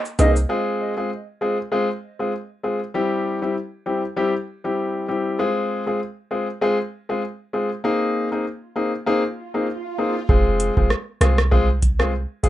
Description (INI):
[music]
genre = dancehall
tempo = 98 BPM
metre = 4/4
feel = swing 56% on 16ths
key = F minor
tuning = A4 = 440 Hz
[part]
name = booming analog drum machine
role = drums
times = 0.1-0.5, 10.3-12.5 s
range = hi-hat, kick drum, rim click, shaker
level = -20 LUFS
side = equal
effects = overdrive
[part]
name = egg shaker and timbales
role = percussion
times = 0.1-0.5 s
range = none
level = -26 LUFS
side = right 4 dB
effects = none
[part]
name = clear grand piano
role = accompaniment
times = 0.2-12.5 s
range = G3 to Ab4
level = -21 LUFS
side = left 2 dB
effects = none
[part]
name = clean 808-style bass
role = bass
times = 0.2-0.5, 10.3-12.5 s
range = F1 to C2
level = -19 LUFS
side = equal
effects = none
[part]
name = swell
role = sound effects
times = 9.3-10.3 s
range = none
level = -33 LUFS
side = right 5 dB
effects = none
[sound]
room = light reverb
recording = rough home demo mix, nothing above 10.9 kHz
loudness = -20 LUFS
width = side -14 dB against mid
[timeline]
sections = 0.5-10.3 A section; 10.3-12.5 B section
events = break 0.0-0.5; swell 9.3-10.3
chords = 0.5 Fm; 2.9 C; 5.4 Fm; 7.8 Abadd9; 10.3 Fm